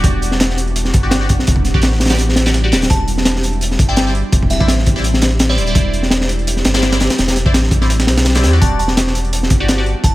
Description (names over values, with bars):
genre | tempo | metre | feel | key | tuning
drum and bass, jungle | 168 BPM | 4/4 | swing 54% on 16ths | unclear | A4 = 440 Hz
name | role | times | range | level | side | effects
ethereal airy pad | sustained chords | 0.0-10.1 s | G3 to F#5 | -25 LUFS | right 3 dB | ensemble chorus, built-in reverb, vintage 12-bit sampler grit
band-passed chord stab | stabs | 0.0-9.8 s | E4 to D5 | -23 LUFS | left 2 dB | phaser, dub echo
soft dub sub bass | bass | 0.0-10.1 s | D1 to E2 | -17 LUFS | equal | tube saturation
crunchy breakbeat drum kit | drums | 0.0-10.1 s | hi-hat, kick drum, snare drum | -14 LUFS | equal | none
dusty soul sampler-style drum kit | drums | 0.0-10.1 s | hi-hat, snare drum | -27 LUFS | right 2 dB | none
glassy synth bell | melody | 2.9-5.9, 8.6-10.1 s | D5 to A5 | -26 LUFS | right 1 dB | chorus, dub echo
room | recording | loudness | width
studio ambience | none | -12 LUFS | side -17 dB against mid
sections
0.0-10.1 A section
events
kick drops out 7.9-8.6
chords
0.0 Em7; 2.9 Cadd9; 8.6 Em7